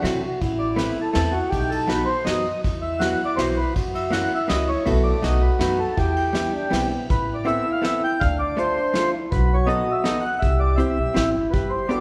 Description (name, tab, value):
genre	musette waltz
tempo	162 BPM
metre	3/4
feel	straight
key	E minor, A minor from 7.1 s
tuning	A4 = 440 Hz
part	warm French horn	second line	0.0-12.0 s	B3 to A4	-29 LUFS	equal	none
part	archtop guitar, miked and amplified	accompaniment	0.0-12.0 s	F#3 to C5	-30 LUFS	equal	none
part	upright bass	bass	0.0-12.0 s	G1 to C3	-27 LUFS	equal	none
part	vintage brush drum kit	drums	0.0-12.0 s	hi-hat, kick drum, ride cymbal, snare drum	-31 LUFS	equal	none
part	mellow accordion	melody	0.6-12.0 s	F#4 to G5	-27 LUFS	equal	none
room	wet recital hall reverb, RT60 1.7 s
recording	recorded in a church or concert hall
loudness	-22 LUFS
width	mono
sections	0.0-7.1 A section; 7.1-12.0 B section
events	none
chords	0.4 Amadd9; 1.5 B; 2.6 Esus2; 3.8 F#7; 4.9 B7sus4; 5.2 B7; 6.0 Em; 7.1 Amadd9; 8.2 Dm; 9.3 B7; 10.4 C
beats	0.04 | 0.41 0.78 1.15 | 1.52 1.89 2.26 | 2.64 3.01 3.38 | 3.75 4.12 4.49 | 4.86 5.23 5.60 | 5.96 6.34 6.71 | 7.09 7.46 7.83 | 8.21 8.58 8.95 | 9.31 9.68 10.05 | 10.41 10.79 11.16 | 11.53 11.90